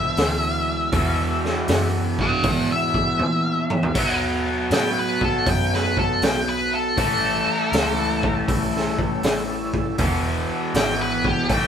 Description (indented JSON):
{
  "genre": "blues rock power trio and southern rock",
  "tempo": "79 BPM",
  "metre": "4/4",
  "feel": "swing 67% on 8ths",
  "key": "E mixolydian",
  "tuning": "A4 = 440 Hz",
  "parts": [
    { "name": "octave-fuzz lead guitar", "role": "melody", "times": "0.0-11.7 s", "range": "G4 to G5", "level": "-23 LUFS", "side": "left 1 dB", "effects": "distortion" },
    { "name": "overdriven tonewheel organ", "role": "sustained chords", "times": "0.0-11.7 s", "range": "G3 to C5", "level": "-35 LUFS", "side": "right 3 dB", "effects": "none" },
    { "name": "raw garage guitar", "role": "riff", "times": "0.0-11.7 s", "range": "E2 to B3", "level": "-24 LUFS", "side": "equal", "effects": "overdrive" },
    { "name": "vintage muted fingered electric bass", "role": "bass", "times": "0.0-11.7 s", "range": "E1 to B2", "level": "-29 LUFS", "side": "equal", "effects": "none" },
    { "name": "raw garage drum kit", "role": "drums", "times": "0.2-11.7 s", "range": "crash cymbal, hi-hat, kick drum, snare drum, toms", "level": "-24 LUFS", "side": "equal", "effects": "none" }
  ],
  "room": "moderate studio reverb, RT60 0.6 s",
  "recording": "band playing live in one room",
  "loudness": "-19 LUFS",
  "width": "side -8 dB against mid",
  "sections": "0.0-11.7 A section",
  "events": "lead electric guitar solo 0.0-11.7; drum fill 3.2-4.0",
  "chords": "0.0 E7; 4.0 B7; 7.0 A7; 10.0 E7",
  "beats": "0.18 | 0.94 1.69 2.45 3.21 | 3.96 4.72 5.47 6.23 | 6.98 7.74 8.49 9.25 | 10.00 10.75 11.51"
}